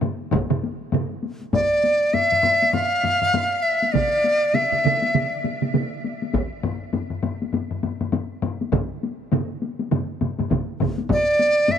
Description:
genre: japanese traditional, taiko drum ensemble.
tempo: 100 BPM.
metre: 4/4.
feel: swing 60% on 16ths.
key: unclear.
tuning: A4 = 444 Hz.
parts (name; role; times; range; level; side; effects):
solo taiko drums; percussion; 0.0-11.8 s; none; -28 LUFS; left 6 dB; none.
solo taiko drums; percussion; 0.0-11.8 s; none; -28 LUFS; left 5 dB; none.
taiko ensemble; percussion; 0.0-11.0 s; none; -25 LUFS; right 7 dB; none.
taiko ensemble; percussion; 0.3-11.3 s; none; -27 LUFS; equal; none.
bright reedy dizi; melody; 1.5-5.4, 11.1-11.8 s; D5 to F5; -19 LUFS; equal; none.
room: moderate huge ambient reverb, RT60 6.7 s.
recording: none.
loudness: -20 LUFS.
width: side -8 dB against mid.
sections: 0.0-1.5 A section; 1.5-11.8 B section.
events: none.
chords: none.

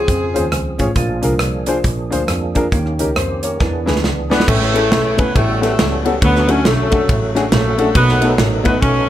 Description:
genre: uptempo gospel.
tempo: 137 BPM.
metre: 4/4.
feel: swing 62% on 8ths.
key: A major from 4.5 s.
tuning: A4 = 441 Hz.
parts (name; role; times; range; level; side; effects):
warm saxophone section; melody; 0.0-0.8, 4.3-9.1 s; C#3 to Ab4; -18 LUFS; left 1 dB; none.
percussive tonewheel organ; sustained chords; 0.0-9.1 s; Db3 to C#5; -23 LUFS; right 4 dB; slow rotary speaker, chorus vibrato.
clear double bass; bass; 0.1-9.1 s; A1 to F2; -20 LUFS; equal; none.
modern studio drum kit; drums; 0.1-8.9 s; crash cymbal, hi-hat, kick drum, ride cymbal, rim click, snare drum; -18 LUFS; right 1 dB; none.
warm upright piano; accompaniment; 0.3-8.7 s; A2 to D5; -20 LUFS; left 3 dB; none.
room: small room ambience.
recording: none.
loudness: -13 LUFS.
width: side -12 dB against mid.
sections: 0.0-4.5 A section; 4.5-9.1 B section.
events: drum fill 3.6-4.5.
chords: 0.0 Dbmaj7; 1.0 Bb7; 2.7 Eb7; 3.6 E7; 4.5 Amaj7; 5.3 A13; 6.2 Dmaj7; 8.0 B7.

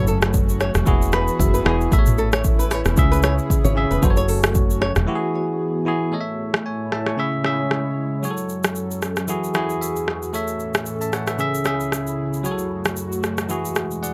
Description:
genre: afrobeats.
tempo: 114 BPM.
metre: 4/4.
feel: swing 55% on 16ths.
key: A major.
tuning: A4 = 441 Hz.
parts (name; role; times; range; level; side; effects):
bell-like tine electric piano; accompaniment; 0.0-14.1 s; C#3 to C#6; -26 LUFS; equal; none.
airy breathy pad; sustained chords; 0.0-14.1 s; C#2 to C#5; -31 LUFS; equal; chorus.
flamenco guitar; riff; 0.0-4.9 s; G#4 to C#5; -29 LUFS; equal; digital delay.
fingered electric bass; bass; 0.0-5.1 s; E1 to C#2; -23 LUFS; equal; none.
afro-pop drum kit; drums; 0.1-14.1 s; hi-hat, kick drum, rim click, shaker, toms; -24 LUFS; equal; none.
room: light reverb.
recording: none.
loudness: -21 LUFS.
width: mono.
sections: 0.0-6.1 A section; 6.1-14.1 B section.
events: tine electric piano fill 0.9-1.9, 9.6-10.3, 13.8-14.1; break 5.1-6.1.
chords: 0.0 F#m; 0.9 Eadd9; 1.9 A; 3.0 C#m; 4.0 F#m; 5.1 Eadd9; 6.1 A; 7.2 C#m; 8.2 F#m; 9.3 Eadd9; 10.3 A; 11.4 C#m; 12.4 F#m; 13.5 Eadd9.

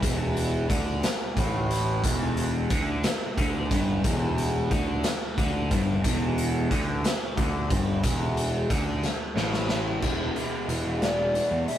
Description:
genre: psychedelic rock.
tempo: 60 BPM (dotted quarters).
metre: 6/8.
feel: straight.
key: E minor.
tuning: A4 = 436 Hz.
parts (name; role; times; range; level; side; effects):
combo organ; sustained chords; 0.0-11.8 s; G3 to B4; -40 LUFS; right 3 dB; none.
fuzz guitar; riff; 0.0-11.8 s; E2 to E3; -29 LUFS; equal; distortion, phaser.
fuzz picked electric bass; bass; 0.0-11.6 s; E1 to E2; -29 LUFS; equal; overdrive.
tanpura; drone; 0.0-11.8 s; E2 to E3; -41 LUFS; right 1 dB; none.
raw garage drum kit; drums; 0.0-11.8 s; crash cymbal, hi-hat, kick drum, snare drum; -28 LUFS; equal; none.
tambourine; percussion; 0.0-11.5 s; none; -43 LUFS; left 7 dB; none.
mellow concert flute; melody; 11.0-11.8 s; D5 to E5; -26 LUFS; left 1 dB; tape echo.
room: moderate studio reverb, RT60 0.5 s.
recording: rough rehearsal-room recording.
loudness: -24 LUFS.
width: side -11 dB against mid.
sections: 0.0-10.0 A section; 10.0-11.8 B section.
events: drum fill 9.0-10.0.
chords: 0.0 Em; 10.0 Emadd9.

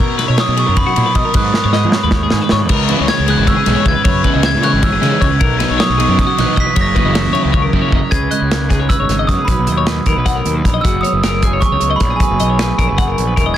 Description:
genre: math rock and midwest emo.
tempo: 310 BPM (eighths).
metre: 7/8.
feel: straight.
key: unclear.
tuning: A4 = 440 Hz.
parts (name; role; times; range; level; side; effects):
clean electric guitar; accompaniment; 0.0-13.6 s; G#2 to B4; -20 LUFS; right 6 dB; spring reverb.
twelve-string electric guitar; arpeggios; 0.0-13.6 s; F#4 to F#5; -21 LUFS; left 9 dB; none.
fuzz fingered electric bass; bass; 0.0-13.5 s; E1 to F#3; -18 LUFS; equal; overdrive.
modern studio drum kit; drums; 0.0-13.5 s; crash cymbal, hi-hat, kick drum, ride cymbal, snare drum, toms; -17 LUFS; equal; none.
glockenspiel with soft plastic mallets; melody; 0.4-13.6 s; G#5 to B6; -18 LUFS; right 2 dB; none.
crunchy overdriven guitar; riff; 2.9-8.0 s; B2 to E4; -19 LUFS; left 1 dB; none.
room: little or no reverb.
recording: dense, heavily limited modern master.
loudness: -12 LUFS.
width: side -11 dB against mid.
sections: 0.0-8.1 A section; 8.1-13.6 B section.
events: drum fill 1.5-2.7, 7.5-8.1.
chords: 0.0 Bmaj9; 1.3 G#m9; 2.7 C#m7; 5.4 Bmaj9; 6.8 F#7; 8.1 C#m9; 9.5 Bmaj7; 10.8 F#9sus4.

